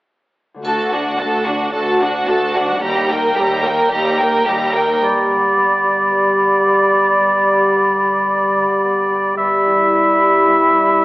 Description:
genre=cinematic, heroic adventure film score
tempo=110 BPM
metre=4/4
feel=straight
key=G major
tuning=A4 = 438 Hz
part: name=concert harp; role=arpeggios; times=0.5-11.0 s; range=G2 to G4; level=-27 LUFS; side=left 2 dB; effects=none
part: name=warm symphonic viola section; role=accompaniment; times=0.6-5.0 s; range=G3 to F#4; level=-20 LUFS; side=equal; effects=none
part: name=rich symphonic cello section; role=bass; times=0.6-5.0 s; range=D2 to Eb2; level=-24 LUFS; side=right 1 dB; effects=none
part: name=triangle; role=percussion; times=0.6-1.7 s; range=none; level=-43 LUFS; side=right 1 dB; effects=none
part: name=rich symphonic violin section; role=melody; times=0.7-5.0 s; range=F#5 to Bb5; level=-20 LUFS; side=equal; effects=none
part: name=clear chamber violin section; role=second line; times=0.7-5.0 s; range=F#4 to Bb4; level=-20 LUFS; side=right 1 dB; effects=none
part: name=clear oboe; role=second line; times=5.0-11.0 s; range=D5 to E5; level=-15 LUFS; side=right 1 dB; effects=none
part: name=dark clarinet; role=second line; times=5.0-11.0 s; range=G4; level=-23 LUFS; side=right 1 dB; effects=none
part: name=mellow hollow concert flute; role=second line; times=5.0-11.0 s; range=B5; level=-18 LUFS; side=equal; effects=none
part: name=mellow French horn section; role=sustained chords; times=5.0-11.0 s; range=G3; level=-20 LUFS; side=left 1 dB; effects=none
room=wet scoring stage reverb, RT60 1.8 s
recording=telephone sound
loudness=-13 LUFS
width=side -20 dB against mid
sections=0.6-5.0 A section; 5.0-11.0 B section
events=build-up 5.0-11.0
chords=0.6 D; 2.8 Eb; 5.0 G; 9.4 Em/G

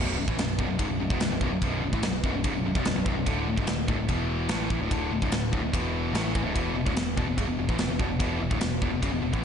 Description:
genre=heavy metal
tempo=146 BPM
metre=4/4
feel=straight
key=B minor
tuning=A4 = 440 Hz
part: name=heavy high-gain guitar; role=riff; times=0.0-9.4 s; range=B1 to A3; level=-30 LUFS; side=left 9 dB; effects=distortion, slapback echo
part: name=heavy high-gain guitar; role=riff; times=0.0-9.4 s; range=B1 to A3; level=-32 LUFS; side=right 9 dB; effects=distortion, slapback echo
part: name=growling picked electric bass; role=bass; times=0.0-9.4 s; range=B0 to A1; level=-32 LUFS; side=equal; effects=overdrive
part: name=tight metal drum kit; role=drums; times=0.3-9.4 s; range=kick drum, ride cymbal, snare drum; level=-29 LUFS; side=right 1 dB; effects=none
room=moderate lush hall reverb, RT60 1.8 s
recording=big arena sound, nothing above 10.4 kHz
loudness=-25 LUFS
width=side -7 dB against mid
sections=0.0-9.4 A section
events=none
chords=0.0 B5; 3.3 D5; 4.1 E5; 4.5 D5; 5.7 E5; 6.1 D5; 6.6 E5

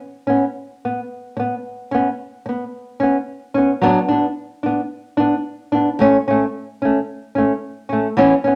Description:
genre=highlife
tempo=110 BPM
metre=4/4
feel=straight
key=unclear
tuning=A4 = 438 Hz
part: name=nylon-string guitar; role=solo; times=0.3-8.6 s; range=E3 to D4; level=-19 LUFS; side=equal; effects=none
room=moderate large studio reverb, RT60 0.8 s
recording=none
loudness=-19 LUFS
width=mono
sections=0.0-8.6 A section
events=none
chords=0.0 C#7(no3); 3.8 Bm; 6.0 F#m (rootless)

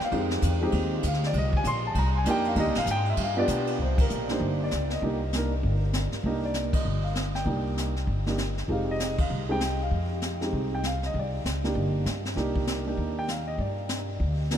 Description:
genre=jazz piano trio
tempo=196 BPM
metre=4/4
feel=swing 62% on 8ths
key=C minor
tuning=A4 = 441 Hz
part: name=warm grand piano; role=melody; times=0.0-14.6 s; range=Ab3 to C6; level=-28 LUFS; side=equal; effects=none
part: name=upright bass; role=bass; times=0.0-14.6 s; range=F1 to B2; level=-28 LUFS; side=equal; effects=none
part: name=jazz brush drum kit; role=drums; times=0.0-14.6 s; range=brushed snare drum, hi-hat, kick drum, ride cymbal, snare drum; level=-32 LUFS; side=equal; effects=none
room=moderate huge ambient reverb, RT60 8.8 s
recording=in a vast, echoing space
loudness=-25 LUFS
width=side -9 dB against mid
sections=0.0-3.8 A section; 3.8-14.6 B section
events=grand piano solo 0.0-3.8; band accent 3.9, 6.7, 9.1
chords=0.1 Fm9; 1.3 Cm9; 3.2 G7; 3.8 Cm9; 8.7 Fm9; 11.1 Cm9; 13.6 G5

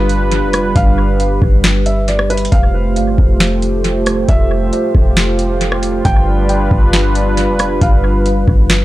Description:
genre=hip hop, atmospheric cloud-rap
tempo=136 BPM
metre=4/4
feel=half-time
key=unclear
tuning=A4 = 440 Hz
part: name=dark analog pad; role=sustained chords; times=0.0-8.8 s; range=G3 to C5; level=-16 LUFS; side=right 1 dB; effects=chorus, sidechain pumping
part: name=clean 808-style bass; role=bass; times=0.0-8.8 s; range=F1 to G1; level=-15 LUFS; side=equal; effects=none
part: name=booming analog drum machine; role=drums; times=0.1-8.8 s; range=hi-hat, kick drum, rim click, snare drum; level=-15 LUFS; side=equal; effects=vintage 12-bit sampler grit, analog delay
part: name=felt-muted upright piano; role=melody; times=0.8-8.2 s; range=B4 to G5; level=-22 LUFS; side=equal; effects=low-pass filter, analog delay
room=digital ambience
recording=echo-heavy mix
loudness=-11 LUFS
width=side -16 dB against mid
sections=0.0-8.8 A section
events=none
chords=0.0 G7; 2.5 F; 6.0 G7

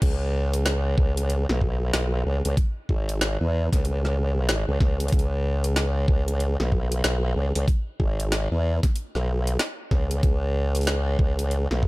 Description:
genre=glitch hop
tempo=94 BPM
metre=4/4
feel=swing 62% on 16ths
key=C# minor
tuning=A4 = 440 Hz
part: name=formant-sweep wobble bass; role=bass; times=0.0-11.9 s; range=G#1 to E2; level=-23 LUFS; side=equal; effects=chorus, tube saturation, high-pass filter
part: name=drum and bass drum kit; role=drums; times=0.0-11.8 s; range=crash cymbal, hi-hat, snare drum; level=-29 LUFS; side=equal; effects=overdrive
part: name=electronic kick drum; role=drums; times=0.0-11.9 s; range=none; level=-22 LUFS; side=equal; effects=overdrive, high-pass filter on kick
room=digital ambience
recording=dark, warm production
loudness=-22 LUFS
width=side -21 dB against mid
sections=0.0-11.9 A section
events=drop 0.0-11.9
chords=none

